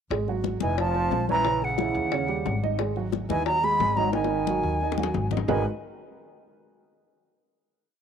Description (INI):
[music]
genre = Afro-Cuban jazz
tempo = 179 BPM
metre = 4/4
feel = straight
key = unclear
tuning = A4 = 440 Hz
[part]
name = dark upright piano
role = accompaniment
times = 0.1-5.6 s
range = C#3 to D#5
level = -30 LUFS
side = right 8 dB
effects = none
[part]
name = upright bass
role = bass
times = 0.1-5.6 s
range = E#1 to D#2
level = -30 LUFS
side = left 1 dB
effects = none
[part]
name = bongos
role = percussion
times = 0.1-5.6 s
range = none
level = -33 LUFS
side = left 13 dB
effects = none
[part]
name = congas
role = percussion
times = 0.1-5.6 s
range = none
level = -34 LUFS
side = left 14 dB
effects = none
[part]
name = silver concert flute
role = melody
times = 0.6-5.6 s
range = F#5 to B5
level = -27 LUFS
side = left 1 dB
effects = none
[part]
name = clear trombone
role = second line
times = 0.6-5.6 s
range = C#3 to G#3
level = -31 LUFS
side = right 8 dB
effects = none
[sound]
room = moderate plate reverb, RT60 2.6 s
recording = 1960s-style stereo with parts hard left and right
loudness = -23 LUFS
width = side -7 dB against mid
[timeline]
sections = 0.1-5.5 A section; 5.5-6.8 final chord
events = drum fill 4.1-5.5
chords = 0.1 G#5; 0.8 F7b13; 1.5 A#dim; 2.1 D#7#9; 2.8 G#7(no3); 5.5 G#m9